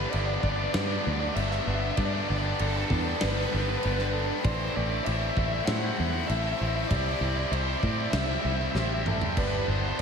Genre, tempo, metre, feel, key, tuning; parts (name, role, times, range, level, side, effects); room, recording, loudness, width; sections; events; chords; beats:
post-rock; 97 BPM; 4/4; straight; G major; A4 = 443 Hz
overdriven electric guitar; melody; 0.0-10.0 s; A4 to F#5; -33 LUFS; equal; tape echo
shimmering ambient pad; sustained chords; 0.0-10.0 s; D4 to A5; -40 LUFS; right 1 dB; chorus, built-in reverb, phaser
felt-muted upright piano; arpeggios; 0.0-10.0 s; A4 to E5; -39 LUFS; right 2 dB; tape echo
tight distorted guitar; riff; 0.0-10.0 s; G2 to E4; -31 LUFS; left 2 dB; distortion
picked electric bass; bass; 0.0-10.0 s; G1 to A2; -30 LUFS; equal
big rock drum kit; drums; 0.1-10.0 s; crash cymbal, kick drum, snare drum, splash cymbal, toms; -32 LUFS; right 1 dB
moderate lush hall reverb, RT60 2.5 s; dreamy mix soaked in reverb; -25 LUFS; side -6 dB against mid
0.0-10.0 A section
drum fill 8.8-9.4
0.0 G; 4.4 Am; 6.9 C; 9.4 G
0.13 0.74 1.36 | 1.98 2.59 3.21 3.82 | 4.44 5.06 5.67 6.29 | 6.91 7.52 8.14 8.76 | 9.37 9.99